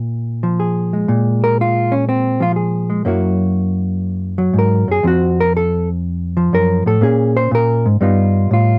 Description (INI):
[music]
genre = solo jazz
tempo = 121 BPM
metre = 4/4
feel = swing 68% on 8ths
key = Bb minor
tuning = A4 = 439 Hz
[part]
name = hollow-body jazz guitar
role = solo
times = 0.0-8.8 s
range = F2 to C5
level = -16 LUFS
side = equal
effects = none
[sound]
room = light reverb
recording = none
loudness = -16 LUFS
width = mono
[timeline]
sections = 0.0-8.8 A section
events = hollow-body jazz guitar solo 0.0-8.8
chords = 0.0 Bb5; 3.1 Gb7; 5.0 F; 7.0 Bbm7; 8.0 G7b13